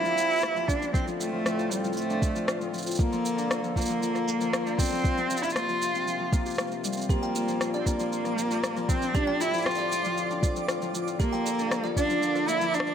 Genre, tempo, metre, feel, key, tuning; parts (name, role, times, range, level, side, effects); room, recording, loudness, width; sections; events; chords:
folktronica; 117 BPM; 4/4; straight; G minor; A4 = 441 Hz
rich cello; melody; 0.0-12.9 s; G3 to F4; -28 LUFS; right 1 dB; tape echo
pedal harmonium; sustained chords; 0.0-12.9 s; A2 to A4; -37 LUFS; equal
Celtic harp; arpeggios; 0.0-12.9 s; F3 to G4; -32 LUFS; left 4 dB
electronic shaker and rim click; drums; 0.1-12.9 s; -33 LUFS; equal
electronic kick drum; drums; 0.7-12.1 s; -26 LUFS; equal
music box; second line; 7.1-12.0 s; F4 to G5; -36 LUFS; right 2 dB; digital delay
twinkling granular texture; texture; 8.0-12.9 s; D5; -40 LUFS; right 3 dB; built-in reverb
light reverb, studio ambience; -25 LUFS; side -8 dB against mid
0.0-12.9 A section
0.0 Gm7; 0.9 Dm7/A; 3.0 Bbmaj7; 5.0 C7sus4; 7.1 Gm7; 9.1 Dm7/A; 11.2 Bbmaj7